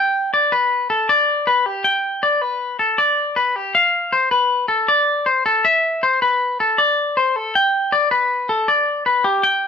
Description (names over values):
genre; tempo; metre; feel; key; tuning
rock; 158 BPM; 5/4; straight; G major; A4 = 439 Hz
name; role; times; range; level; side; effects
twangy electric guitar; solo; 0.0-9.7 s; G4 to G5; -15 LUFS; left 2 dB; none
room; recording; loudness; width
light reverb; band playing live in one room; -15 LUFS; side -6 dB against mid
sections
0.0-9.7 A section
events
none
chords
none